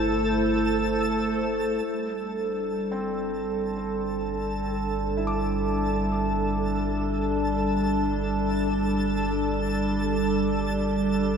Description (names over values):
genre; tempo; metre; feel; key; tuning
ambient; free time; none; none; unclear; A4 = 440 Hz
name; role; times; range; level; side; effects
warbly tape-like pad; sustained chords; 0.0-11.4 s; G3 to A5; -25 LUFS; right 1 dB; chorus, built-in reverb
felt-muted upright piano; arpeggios; 0.0-11.4 s; C4 to D6; -39 LUFS; right 1 dB; tape echo
warm sub bass; bass; 0.0-11.4 s; G1; -33 LUFS; equal; none
twinkling granular texture; texture; 0.0-11.4 s; A4 to A5; -34 LUFS; left 1 dB; built-in reverb
organ-like drone; drone; 6.5-11.4 s; G3; -36 LUFS; right 4 dB; none
room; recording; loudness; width
wet huge ambient reverb, RT60 6.9 s; none; -24 LUFS; side -6 dB against mid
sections
0.0-1.9 A section; 1.9-11.4 B section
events
fade-in on felt piano 1.9-11.4; fade-in on synth texture 1.9-11.4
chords
0.0 Am7/G; 1.9 Gsus2